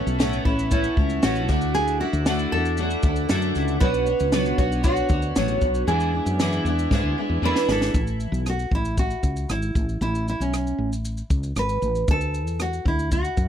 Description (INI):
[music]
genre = acoustic pop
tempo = 116 BPM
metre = 4/4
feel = straight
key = A major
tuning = A4 = 439 Hz
[part]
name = nylon-string guitar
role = melody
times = 0.0-13.5 s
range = C#4 to B4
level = -26 LUFS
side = right 2 dB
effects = none
[part]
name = fingerpicked twelve-string acoustic guitar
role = accompaniment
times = 0.0-8.4 s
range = E2 to C#5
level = -25 LUFS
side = left 1 dB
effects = double-tracked left and right
[part]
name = mellow tonewheel organ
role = sustained chords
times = 0.0-7.9 s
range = D4 to D6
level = -34 LUFS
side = left 1 dB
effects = slow rotary speaker
[part]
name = woody fretless electric bass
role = bass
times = 0.1-13.5 s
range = G#1 to G#2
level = -25 LUFS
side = equal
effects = none
[part]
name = compact cocktail drum kit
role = drums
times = 0.1-13.5 s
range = kick drum, rim click, shaker, snare drum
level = -24 LUFS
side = equal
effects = none
[sound]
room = little or no reverb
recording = dry, close 1970s-style studio recording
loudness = -20 LUFS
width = side -9 dB against mid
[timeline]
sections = 0.0-7.9 A section; 7.9-13.5 B section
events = drum fill 6.9-7.9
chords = 0.0 Aadd9; 1.5 Dadd9; 3.8 Bmadd9; 5.9 E7; 7.9 A5; 12.1 D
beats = 0.20 0.72 1.23 | 1.75 2.26 2.78 3.30 | 3.81 4.33 4.84 5.36 | 5.88 6.39 6.91 7.43 | 7.94 8.46 8.98 9.49 | 10.01 10.53 11.05 11.57 | 12.08 12.60 13.12